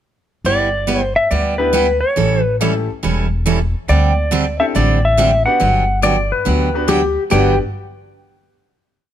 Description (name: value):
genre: country, western swing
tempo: 140 BPM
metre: 4/4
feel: swing 66% on 8ths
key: G major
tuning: A4 = 441 Hz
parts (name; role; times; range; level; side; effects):
- upright bass; bass; 0.4-7.6 s; E1 to D2; -18 LUFS; equal; none
- clean lap steel guitar; melody; 0.5-7.6 s; B4 to G5; -16 LUFS; left 1 dB; none
- picked steel-string acoustic guitar; accompaniment; 0.5-7.5 s; G2 to A4; -19 LUFS; right 4 dB; none
- bright upright piano; accompaniment; 1.6-7.6 s; A3 to B4; -23 LUFS; left 1 dB; none
- clean lap steel guitar; second line; 6.0-7.6 s; G4 to D5; -18 LUFS; left 6 dB; none
room: light reverb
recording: none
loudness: -13 LUFS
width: side -10 dB against mid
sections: 0.5-7.3 A section; 7.3-9.0 final chord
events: none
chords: 0.5 G6; 2.2 A7; 3.9 D9sus4; 5.6 Gmaj7